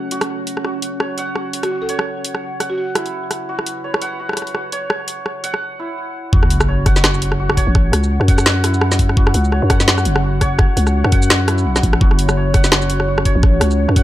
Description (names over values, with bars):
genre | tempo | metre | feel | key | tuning
half-time drum and bass | 169 BPM | 4/4 | swing 57% on 16ths, half-time | unclear | A4 = 443 Hz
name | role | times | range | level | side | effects
dark analog pad | sustained chords | 0.0-14.0 s | C#4 to B5 | -25 LUFS | equal | chorus, sidechain pumping
santur | arpeggios | 0.0-14.0 s | E4 to F#5 | -25 LUFS | right 1 dB | vintage 12-bit sampler grit, low-pass filter, ping-pong delay
drum and bass drum kit | drums | 0.1-14.0 s | hi-hat, rim click, shaker, snare drum | -18 LUFS | equal | overdrive
buzzing marimba with soft mallets | melody | 1.6-2.8 s | F#4 to A4 | -25 LUFS | right 2 dB | ping-pong delay
growling 808-style bass | bass | 6.3-14.0 s | F#1 to F#2 | -16 LUFS | equal | none
electronic kick drum | drums | 6.3-14.0 s | none | -14 LUFS | equal | overdrive
sub drop | sound effects | 6.3-7.7 s | none | -21 LUFS | equal | none
room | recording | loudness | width
light reverb | dark, warm production | -14 LUFS | side -14 dB against mid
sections
0.0-6.3 A section; 6.3-14.0 B section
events
break 5.6-6.3; drop 6.3-14.0; impact 6.3-7.7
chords
0.0 F#5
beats
0.29 | 0.65 1.00 1.36 1.71 | 2.07 2.42 2.78 3.13 | 3.49 3.84 4.20 4.55 | 4.91 5.26 5.62 5.97 | 6.33 6.68 7.04 7.39 | 7.75 8.10 8.46 8.81 | 9.17 9.52 9.88 10.23 | 10.59 10.94 11.30 11.65 | 12.01 12.36 12.72 13.07 | 13.43 13.78